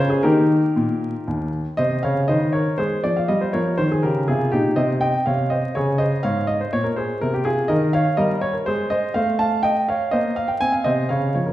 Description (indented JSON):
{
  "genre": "classical-period piano sonatina",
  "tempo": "122 BPM",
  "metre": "3/4",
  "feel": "rubato",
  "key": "unclear",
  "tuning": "A4 = 439 Hz",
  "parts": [
    { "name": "warm baby grand piano", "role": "solo", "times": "0.0-11.5 s", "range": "Eb2 to A5", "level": "-18 LUFS", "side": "equal", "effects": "none" }
  ],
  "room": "wet recital hall reverb, RT60 1.5 s",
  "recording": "heard from further back in the room, vinyl crackle, nothing above 10.8 kHz",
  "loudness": "-18 LUFS",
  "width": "side -14 dB against mid",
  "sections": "0.0-1.8 A section; 1.8-11.5 B section",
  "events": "none",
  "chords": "0.2 Eb; 1.8 Dbmaj13/C; 2.8 Fm6; 3.3 Eb; 4.8 Cmadd11; 5.7 Db5; 6.2 Ab; 7.7 Eb7; 8.7 Ab; 9.1 F7/A; 10.1 Bbsus24; 10.6 N.C."
}